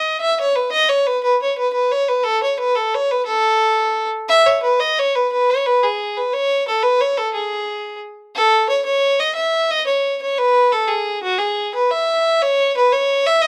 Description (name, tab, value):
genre	celtic folk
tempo	118 BPM (dotted quarters)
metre	12/8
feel	straight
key	unclear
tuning	A4 = 441 Hz
part	warm fiddle	solo	0.0-13.5 s	F#4 to E5	-18 LUFS	equal	none
room	light reverb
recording	close, detailed microphones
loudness	-18 LUFS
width	mono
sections	0.0-8.3 A section; 8.3-13.5 B section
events	none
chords	none